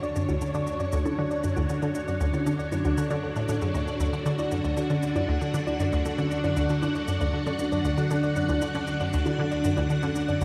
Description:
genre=ambient, sequencer-driven space music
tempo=117 BPM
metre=4/4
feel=straight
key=D major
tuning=A4 = 441 Hz
part: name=string machine, full ensemble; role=sustained chords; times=0.0-10.4 s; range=D3 to F#5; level=-30 LUFS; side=equal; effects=ensemble chorus
part: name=thumb-piano-like synth pluck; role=arpeggios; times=0.0-10.4 s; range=D3 to D5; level=-35 LUFS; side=equal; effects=chorus, tape echo
part: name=shaker and bongos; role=percussion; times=0.0-10.4 s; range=none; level=-42 LUFS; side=equal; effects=tape echo
part: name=resonant blip pluck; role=riff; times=0.2-10.4 s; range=D2 to D3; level=-30 LUFS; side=equal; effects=chorus, cassette tape, tape echo
room=wet huge ambient reverb, RT60 8.4 s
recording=dreamy mix soaked in reverb, cassette tape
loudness=-27 LUFS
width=mono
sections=0.0-10.4 A section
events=none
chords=0.0 Dmaj7

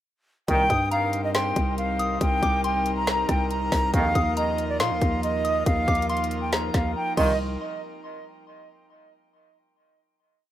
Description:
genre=hip hop, trap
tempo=139 BPM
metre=4/4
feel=half-time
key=C minor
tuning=A4 = 442 Hz
part: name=silver concert flute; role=melody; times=0.5-7.4 s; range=D5 to Bb5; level=-26 LUFS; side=equal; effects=tape echo
part: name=airy breathy pad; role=sustained chords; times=0.5-7.4 s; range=F3 to Bb4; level=-32 LUFS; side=right 1 dB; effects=chorus
part: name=mellow brass ensemble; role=stabs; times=0.5-0.8, 3.9-4.2, 7.2-7.3 s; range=Bb1 to Eb3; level=-31 LUFS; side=right 2 dB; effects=tape echo
part: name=growling 808-style bass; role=bass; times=0.5-7.6 s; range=C2 to Bb2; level=-28 LUFS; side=equal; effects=none
part: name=trap drum kit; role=drums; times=0.5-7.3 s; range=crash cymbal, hi-hat, kick drum, rim click, snare drum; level=-27 LUFS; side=equal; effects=none
part: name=soft synth bell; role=second line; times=0.7-7.4 s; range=Bb5 to Eb6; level=-32 LUFS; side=left 4 dB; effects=chorus, tape echo
room=light reverb, digital ambience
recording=rough home demo mix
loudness=-21 LUFS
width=side -12 dB against mid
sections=0.5-7.4 hook; 7.4-9.1 final hit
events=drums muted 7.0-7.4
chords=0.5 Cm7; 3.9 Ebsus2; 7.2 Cm7; 7.4 N.C.

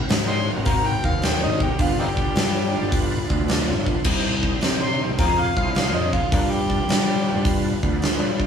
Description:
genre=blues rock power trio and southern rock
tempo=106 BPM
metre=4/4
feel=swing 67% on 8ths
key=unclear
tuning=A4 = 442 Hz
part: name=overdriven tonewheel organ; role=sustained chords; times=0.0-8.5 s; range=C4 to D5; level=-28 LUFS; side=right 3 dB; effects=chorus vibrato, slow rotary speaker
part: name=fuzz picked electric bass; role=bass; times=0.1-8.4 s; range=G1 to G3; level=-25 LUFS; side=left 2 dB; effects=overdrive
part: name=huge arena drum kit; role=drums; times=0.1-8.5 s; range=crash cymbal, hi-hat, kick drum, snare drum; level=-22 LUFS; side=equal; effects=none
part: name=overdriven harmonica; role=melody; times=0.3-7.6 s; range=Bb3 to C6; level=-25 LUFS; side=left 1 dB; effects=none
room=moderate studio reverb, RT60 0.7 s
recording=band playing live in one room, studio reverb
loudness=-19 LUFS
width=side -7 dB against mid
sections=0.0-8.5 A section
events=harmonica solo 0.0-8.5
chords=0.0 Ab7; 1.8 G7; 4.1 Cm; 5.2 Fm; 6.3 G7

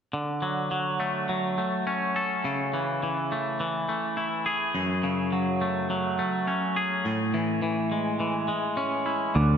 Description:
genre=rock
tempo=104 BPM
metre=4/4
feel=straight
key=A major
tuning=A4 = 441 Hz
part: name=twangy electric guitar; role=arpeggios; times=0.1-9.6 s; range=F#2 to A4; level=-25 LUFS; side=equal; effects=spring reverb, tape echo
part: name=glockenspiel with rubber mallets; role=arpeggios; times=9.4-9.6 s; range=D6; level=-30 LUFS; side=right 8 dB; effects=none
part: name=growling picked electric bass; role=bass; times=9.4-9.6 s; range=D2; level=-19 LUFS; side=equal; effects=overdrive
room=wet plate reverb, RT60 2.8 s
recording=dreamy mix soaked in reverb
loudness=-25 LUFS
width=side -7 dB against mid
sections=0.1-9.4 A section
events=none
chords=0.1 Dmaj7; 2.4 Amaj7/C#; 4.8 F#madd9; 7.1 Amaj7

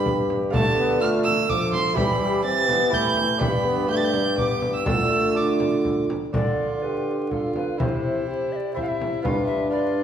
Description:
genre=classical, renaissance-style consort dance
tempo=124 BPM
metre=3/4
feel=straight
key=D dorian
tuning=A4 = 443 Hz
part: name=mellow hollow tenor recorder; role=melody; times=0.0-10.0 s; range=F4 to F5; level=-30 LUFS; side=left 2 dB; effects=none
part: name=warm violin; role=second line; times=0.0-10.0 s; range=E4 to A6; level=-26 LUFS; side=right 4 dB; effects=none
part: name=lute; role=accompaniment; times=0.0-10.0 s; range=G2 to C5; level=-30 LUFS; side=right 4 dB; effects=none
part: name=warm trombone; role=accompaniment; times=0.0-10.0 s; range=F3 to G4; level=-27 LUFS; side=left 2 dB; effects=none
part: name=dark bassoon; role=bass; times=0.0-10.0 s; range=G2 to E3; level=-26 LUFS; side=equal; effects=none
part: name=frame drum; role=percussion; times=0.1-9.5 s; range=none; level=-28 LUFS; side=equal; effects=none
room=wet recital hall reverb, RT60 1.5 s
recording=recorded in a church or concert hall, vinyl crackle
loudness=-20 LUFS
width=side -9 dB against mid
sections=0.0-6.3 A section; 6.3-10.0 B section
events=none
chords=0.0 G; 0.5 Dm; 2.0 Em; 3.4 G; 4.9 Dm; 7.8 C; 9.2 G7

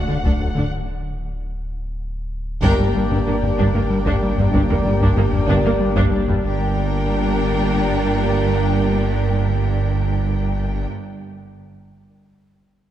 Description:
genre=cinematic, hybrid orchestral and electronic film score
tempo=63 BPM (dotted quarters)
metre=6/8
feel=straight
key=G harmonic minor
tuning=A4 = 439 Hz
part: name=dark symphonic violin section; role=melody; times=0.0-10.9 s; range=F#5 to G5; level=-31 LUFS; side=left 4 dB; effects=none
part: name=warm analog pad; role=sustained chords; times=0.0-10.9 s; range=A3 to D5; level=-26 LUFS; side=left 2 dB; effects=chorus
part: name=round analog bass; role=riff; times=0.0-6.4 s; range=D2 to G3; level=-23 LUFS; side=left 2 dB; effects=none
part: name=punchy sub bass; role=bass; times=0.0-10.9 s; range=D1 to G1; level=-26 LUFS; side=equal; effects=none
part: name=bright symphonic violin section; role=second line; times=0.1-10.9 s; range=D4 to Bb4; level=-32 LUFS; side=left 2 dB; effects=none
part: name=rich symphonic viola section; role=accompaniment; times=0.1-10.9 s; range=G3 to D4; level=-28 LUFS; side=right 1 dB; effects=none
part: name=clear studio cello section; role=bass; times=0.1-10.9 s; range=D2 to G2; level=-24 LUFS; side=right 3 dB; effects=none
part: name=clear symphonic double bass section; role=bass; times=0.1-10.9 s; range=G1 to D2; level=-25 LUFS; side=right 4 dB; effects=none
part: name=taiko ensemble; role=drums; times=0.3-6.6 s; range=none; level=-24 LUFS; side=equal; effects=none
part: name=dark French horn section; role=sustained chords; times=0.4-10.9 s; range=F#3 to Bb4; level=-27 LUFS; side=equal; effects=none
room=moderate concert hall reverb, RT60 2.5 s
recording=dark, warm production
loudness=-16 LUFS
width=side -11 dB against mid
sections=0.0-2.6 A section; 2.6-6.4 B section; 6.4-10.3 C section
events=break 0.7-2.6; drum fill 2.2-2.6; band accent 2.6-3.3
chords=0.0 D; 2.6 Gm

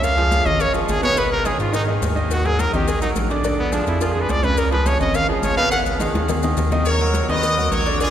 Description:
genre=latin, salsa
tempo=211 BPM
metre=4/4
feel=straight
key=Eb minor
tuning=A4 = 438 Hz
part: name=bright trumpet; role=melody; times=0.0-5.8 s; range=Cb4 to Gb5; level=-22 LUFS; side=equal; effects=none
part: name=bright concert grand piano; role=accompaniment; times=0.0-8.1 s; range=Cb3 to Eb5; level=-23 LUFS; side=right 2 dB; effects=none
part: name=rubbery square bass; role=bass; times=0.0-8.1 s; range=Ab1 to Ab2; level=-22 LUFS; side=equal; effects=none
part: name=congas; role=percussion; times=0.0-8.1 s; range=none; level=-29 LUFS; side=left 2 dB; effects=none
part: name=cowbell and bongos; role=percussion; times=0.0-8.1 s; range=none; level=-29 LUFS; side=left 1 dB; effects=none
part: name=maracas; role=percussion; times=0.0-8.1 s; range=none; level=-37 LUFS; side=left 6 dB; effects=none
part: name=brilliant horn section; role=melody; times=6.9-8.1 s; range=F4 to Eb5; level=-20 LUFS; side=left 1 dB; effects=none
room=wet cathedral reverb, RT60 5.2 s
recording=recorded in a church or concert hall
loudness=-17 LUFS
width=side -10 dB against mid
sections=0.0-6.9 A section; 6.9-8.1 B section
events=trumpet solo 0.0-6.9; drum fill 6.0-6.9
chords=0.0 Db; 1.2 Abm; 2.3 Ebm; 3.4 Bb7; 4.6 Db; 5.7 Abm; 6.9 Ebm7

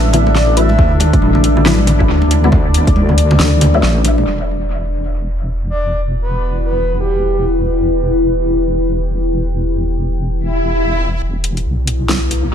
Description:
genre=deep dubstep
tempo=138 BPM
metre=4/4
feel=swing 60% on 16ths, half-time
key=E minor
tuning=A4 = 444 Hz
part: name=deep dark ambient pad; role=sustained chords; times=0.0-12.5 s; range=D4 to G5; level=-19 LUFS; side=left 2 dB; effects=chorus, built-in reverb, vintage 12-bit sampler grit
part: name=deep soft wobble bass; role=bass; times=0.0-12.5 s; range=E1 to D2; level=-15 LUFS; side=equal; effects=chorus, tube saturation
part: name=filtered dub chord stab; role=stabs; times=0.1-3.8, 12.1-12.2 s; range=F#3 to E4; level=-21 LUFS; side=left 3 dB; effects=phaser, ensemble chorus, dub echo
part: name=deep house drum kit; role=drums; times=0.1-4.2, 11.4-12.4 s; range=hi-hat, snare drum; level=-20 LUFS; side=equal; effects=overdrive, high-pass filter on hats, low-pass filter on hats, small room ambience, high-pass filter on snare, low-pass filter on snare, analog delay
part: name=congas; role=percussion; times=0.1-4.2 s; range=none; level=-20 LUFS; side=right 2 dB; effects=dub echo
part: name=breathy flute-like synth lead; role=melody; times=0.4-0.9, 5.7-7.4 s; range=G4 to E5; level=-23 LUFS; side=equal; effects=wide subtle chorus, dub echo
part: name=electronic kick drum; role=drums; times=0.8-2.9 s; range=none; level=-14 LUFS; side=equal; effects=overdrive, small room ambience
part: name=swell and riser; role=sound effects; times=10.4-12.5 s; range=none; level=-21 LUFS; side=left 1 dB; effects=none
room=light reverb, digital ambience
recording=echo-heavy mix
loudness=-12 LUFS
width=side -9 dB against mid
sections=0.0-4.3 A section; 4.3-11.2 B section; 11.2-12.5 C section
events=drop 0.0-4.3; filter sweep on ambient pad 4.3-11.2; swell 10.4-11.2; build-up 11.2-12.5; riser 11.2-12.5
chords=0.0 D6; 4.3 Em; 11.2 E5

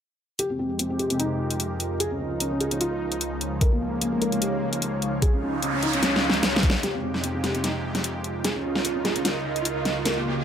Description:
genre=heavy wobble dubstep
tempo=149 BPM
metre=4/4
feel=swing 54% on 16ths, half-time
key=unclear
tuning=A4 = 440 Hz
part: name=felt-muted upright piano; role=melody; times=0.4-10.3 s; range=Bb3 to Bb4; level=-29 LUFS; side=left 1 dB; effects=digital delay
part: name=supersaw pad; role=sustained chords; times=0.4-10.4 s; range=Db2 to G4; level=-30 LUFS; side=equal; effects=sidechain pumping, low-pass filter
part: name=dubstep drum kit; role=drums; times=0.4-10.1 s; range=hi-hat, snare drum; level=-26 LUFS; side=equal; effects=none
part: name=ethereal airy pad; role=texture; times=1.3-10.4 s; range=Db3 to F5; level=-30 LUFS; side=right 2 dB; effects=ensemble chorus, built-in reverb, phaser, sidechain pumping
part: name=electronic kick drum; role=drums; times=3.6-6.7 s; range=none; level=-21 LUFS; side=equal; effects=overdrive
part: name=noise sweep and riser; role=sound effects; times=5.4-10.4 s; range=none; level=-32 LUFS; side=right 1 dB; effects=none
room=light reverb, digital ambience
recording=none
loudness=-23 LUFS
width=side -8 dB against mid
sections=0.4-6.8 A section; 6.8-10.4 B section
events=filter sweep on supersaw synth 0.4-6.8; noise sweep 5.4-6.8; drum fill 6.0-6.8, 6.8-10.4; build-up 6.8-10.4; riser 6.8-10.4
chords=0.4 Fmadd9; 2.0 Dbadd9; 6.8 Fmadd9; 8.4 Dbadd9

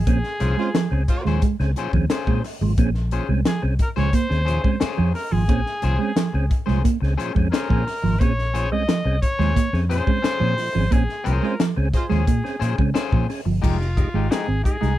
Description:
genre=funk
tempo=88 BPM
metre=4/4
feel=straight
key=unclear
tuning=A4 = 439 Hz
part: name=clear trumpet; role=melody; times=0.0-15.0 s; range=F4 to Eb5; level=-28 LUFS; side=left 1 dB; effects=none
part: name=mellow electric guitar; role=riff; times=0.0-14.9 s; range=F3 to C4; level=-24 LUFS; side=right 7 dB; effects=none
part: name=vintage muted fingered electric bass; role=bass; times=0.0-15.0 s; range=F1 to Db3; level=-21 LUFS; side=equal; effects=none
part: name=percussive tonewheel organ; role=stabs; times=0.1-14.9 s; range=Bb2 to Ab4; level=-30 LUFS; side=right 2 dB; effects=overdrive, chorus vibrato, fast rotary speaker
part: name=crisp fusion drum kit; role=drums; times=0.1-15.0 s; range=crash cymbal, hi-hat, kick drum, snare drum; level=-23 LUFS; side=left 1 dB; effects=none
part: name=electric guitar at the edge of break-up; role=accompaniment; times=0.4-14.9 s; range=Ab3 to C5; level=-29 LUFS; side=left 7 dB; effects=none
part: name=warm horn section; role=second line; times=0.6-1.2, 11.4-12.1 s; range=Ab3 to C5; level=-28 LUFS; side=right 2 dB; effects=none
room=little or no reverb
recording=none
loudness=-18 LUFS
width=side -14 dB against mid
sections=0.0-13.6 A section; 13.6-15.0 B section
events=band accent 0.1-2.8, 10.9-13.6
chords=0.0 Bbm9; 13.6 Fm9

